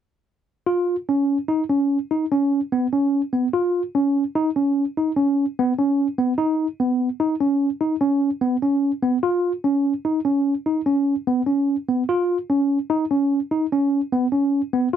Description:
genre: progressive instrumental, progressive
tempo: 147 BPM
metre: 7/4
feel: straight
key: unclear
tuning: A4 = 445 Hz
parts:
  - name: tine electric piano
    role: solo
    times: 0.7-15.0 s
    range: Cb4 to F4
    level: -19 LUFS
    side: equal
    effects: fast stereo tremolo
room: light reverb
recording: dry, close 1970s-style studio recording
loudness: -19 LUFS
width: side -9 dB against mid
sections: 0.7-15.0 A section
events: none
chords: none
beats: | 0.68 1.09 1.50 1.90 2.31 2.72 3.13 | 3.54 3.94 4.35 4.76 5.17 5.58 5.98 | 6.39 6.80 7.21 7.61 8.02 8.43 8.83 | 9.24 9.65 10.05 10.46 10.87 11.28 11.68 | 12.09 12.50 12.90 13.31 13.72 14.12 14.53 | 14.94

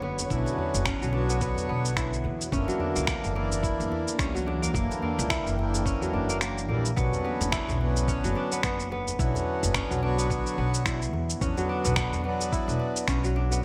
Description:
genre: organic downtempo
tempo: 108 BPM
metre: 4/4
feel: swing 57% on 16ths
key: B harmonic minor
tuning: A4 = 440 Hz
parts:
  - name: ethereal airy pad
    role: sustained chords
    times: 0.0-7.0 s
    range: D3 to G5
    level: -39 LUFS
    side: equal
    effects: ensemble chorus, built-in reverb, sidechain pumping
  - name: kora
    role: arpeggios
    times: 0.0-13.6 s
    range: F#3 to E4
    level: -34 LUFS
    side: equal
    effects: delay
  - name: upright bass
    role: bass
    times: 0.0-13.6 s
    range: E1 to F#2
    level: -32 LUFS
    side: equal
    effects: none
  - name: djembe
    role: percussion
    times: 0.0-13.6 s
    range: none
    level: -41 LUFS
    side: equal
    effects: none
  - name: electronic shaker and finger snaps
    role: drums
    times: 0.2-13.6 s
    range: none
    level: -34 LUFS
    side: equal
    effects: overdrive, gated reverb
  - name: hand-pumped harmonium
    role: accompaniment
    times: 0.3-13.6 s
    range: D3 to C#5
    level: -34 LUFS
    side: equal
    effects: sidechain pumping, delay
  - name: electronic kick drum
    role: drums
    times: 0.3-13.2 s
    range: none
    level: -35 LUFS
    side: equal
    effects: overdrive
room: moderate plate reverb, RT60 2.2 s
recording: bright 1980s-style digital production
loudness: -27 LUFS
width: mono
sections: 0.0-7.0 A section; 7.0-13.6 A section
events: kick drops out 6.4-7.0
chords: 0.0 Bmadd9; 2.5 F#7b9b13; 7.0 Bmadd9; 11.4 Em9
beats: | 0.30 0.86 1.41 1.97 | 2.52 3.08 3.63 4.19 | 4.75 5.30 5.86 6.41 | 6.97 7.52 8.08 8.63 | 9.19 9.75 10.30 10.86 | 11.41 11.97 12.52 13.08 | 13.63

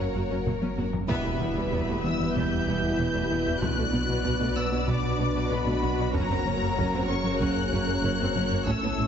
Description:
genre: cinematic, hybrid orchestral and electronic film score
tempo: 95 BPM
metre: 4/4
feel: straight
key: E minor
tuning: A4 = 440 Hz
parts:
  - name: warm symphonic violin section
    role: melody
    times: 0.0-9.1 s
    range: F#5 to G6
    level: -32 LUFS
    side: left 3 dB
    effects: none
  - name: warm symphonic violin section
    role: second line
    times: 0.0-9.1 s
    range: A4 to E5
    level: -35 LUFS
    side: left 4 dB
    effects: none
  - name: warm symphonic viola section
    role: accompaniment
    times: 0.0-9.1 s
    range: F#3 to G4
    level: -35 LUFS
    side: right 1 dB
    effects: none
  - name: clear trombone section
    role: sustained chords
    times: 0.0-9.1 s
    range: B2 to A#3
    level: -36 LUFS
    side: right 4 dB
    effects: none
  - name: hollow soft pad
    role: sustained chords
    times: 0.0-9.1 s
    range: F#3 to B4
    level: -35 LUFS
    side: right 1 dB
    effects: none
  - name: mellow French horn section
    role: sustained chords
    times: 0.0-9.1 s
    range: A3 to A#4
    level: -35 LUFS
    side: left 2 dB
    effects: none
  - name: harp-like synth pluck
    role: arpeggios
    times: 0.0-9.1 s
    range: E3 to B4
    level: -35 LUFS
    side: left 2 dB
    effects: none
  - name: rubbery square bass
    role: riff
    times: 0.0-9.1 s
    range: E2 to B3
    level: -33 LUFS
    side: left 1 dB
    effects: none
  - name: dark symphonic cello section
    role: bass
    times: 0.0-9.0 s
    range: E2 to B2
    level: -35 LUFS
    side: right 3 dB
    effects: none
  - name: pure sine sub bass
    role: bass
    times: 0.0-9.1 s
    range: E1 to B1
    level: -36 LUFS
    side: equal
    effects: none
  - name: warm symphonic double bass section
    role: bass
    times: 0.1-9.0 s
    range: E1 to B1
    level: -35 LUFS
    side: right 5 dB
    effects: none
  - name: taiko ensemble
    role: drums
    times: 0.5-9.1 s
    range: none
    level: -36 LUFS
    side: equal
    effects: none
  - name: impact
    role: sound effects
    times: 1.1-3.6 s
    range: none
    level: -39 LUFS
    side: right 1 dB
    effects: none
room: wet scoring stage reverb, RT60 1.5 s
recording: heavily compressed radio sound, multiband compression, nothing above 7.8 kHz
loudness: -24 LUFS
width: side -8 dB against mid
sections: 0.0-1.1 A section; 1.1-9.1 B section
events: drum fill 0.5-1.1; band accent 1.1-1.7; impact 1.1-3.6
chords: 0.0 F#; 1.1 Em; 3.6 Bm; 6.1 F#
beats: 0.46 | 1.09 1.72 2.35 2.99 | 3.62 4.25 4.88 5.51 | 6.14 6.78 7.41 8.04 | 8.67

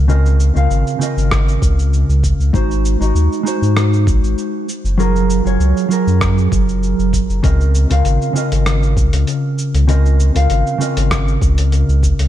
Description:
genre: sunset chillout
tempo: 98 BPM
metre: 4/4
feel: swing 54% on 16ths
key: Db major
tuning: A4 = 440 Hz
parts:
  - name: mellow electric guitar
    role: accompaniment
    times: 0.0-12.3 s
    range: Db3 to F5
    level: -18 LUFS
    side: moving between left 2 dB and right 5 dB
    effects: auto-pan, tape echo
  - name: warm sub bass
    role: bass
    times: 0.0-12.3 s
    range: Gb1 to Ab2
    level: -14 LUFS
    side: equal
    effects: none
  - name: dusty soul sampler-style drum kit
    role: drums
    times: 0.1-12.3 s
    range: hi-hat, rim click, shaker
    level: -25 LUFS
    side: equal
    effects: none
  - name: electronic kick drum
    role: drums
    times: 1.3-12.2 s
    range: none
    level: -17 LUFS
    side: equal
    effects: none
room: light reverb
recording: dark, warm production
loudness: -12 LUFS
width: side -12 dB against mid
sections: 0.0-12.3 A section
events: none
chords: 0.0 Dbmaj13; 2.5 Ab7; 4.7 Gbmaj9; 7.4 Dbmaj13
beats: | 0.09 0.70 1.31 1.93 | 2.54 3.15 3.76 4.38 | 4.99 5.60 6.21 6.83 | 7.44 8.05 8.66 9.27 | 9.89 10.50 11.11 11.72

